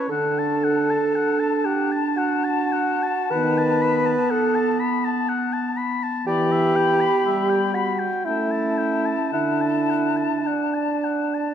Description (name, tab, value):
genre	classical, slow romantic movement for wind quintet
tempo	50-63 BPM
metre	3/4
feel	rubato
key	D major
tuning	A4 = 440 Hz
part	mellow concert flute	melody	0.0-11.5 s	A5 to B5	-30 LUFS	left 10 dB	none
part	warm oboe	second line	0.0-11.5 s	C#5 to B5	-27 LUFS	left 6 dB	none
part	mellow clarinet	accompaniment	0.0-11.5 s	B3 to D4	-26 LUFS	right 4 dB	none
part	warm bassoon	bass	0.0-11.5 s	D4 to B4	-23 LUFS	right 2 dB	none
part	warm French horn	accompaniment	0.1-10.3 s	D3 to A3	-27 LUFS	left 1 dB	none
room	moderate concert hall reverb, RT60 1.9 s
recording	none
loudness	-19 LUFS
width	side -9 dB against mid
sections	0.0-11.5 A section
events	none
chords	0.1 D; 3.3 B7/D#; 6.3 Em7; 7.2 Em/G; 8.2 A7; 9.3 D